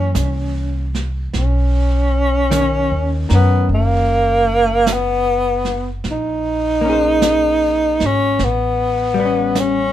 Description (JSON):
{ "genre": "jazz ballad", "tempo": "51 BPM", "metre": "4/4", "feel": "swing 67% on 8ths", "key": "unclear", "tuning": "A4 = 440 Hz", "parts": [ { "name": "breathy tenor saxophone", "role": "melody", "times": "0.0-9.9 s", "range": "A#3 to Eb4", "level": "-16 LUFS", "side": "equal", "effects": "none" }, { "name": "hollow-body jazz guitar", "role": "accompaniment", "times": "0.0-9.9 s", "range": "D#3 to C5", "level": "-23 LUFS", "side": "left 4 dB", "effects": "none" }, { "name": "upright bass", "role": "bass", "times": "0.0-9.9 s", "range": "F#1 to Gb2", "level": "-19 LUFS", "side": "equal", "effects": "none" }, { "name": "vintage brush drum kit", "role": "drums", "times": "0.1-9.9 s", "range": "brushed snare drum, hi-hat, snare drum", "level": "-26 LUFS", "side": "right 4 dB", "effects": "none" } ], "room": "light reverb", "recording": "minimal, uncompressed stereo recording", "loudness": "-14 LUFS", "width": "side -12 dB against mid", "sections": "0.0-9.9 A section", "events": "none", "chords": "0.0 Gb7 (rootless); 1.3 Bmaj9; 6.0 Bbm9; 8.4 A9" }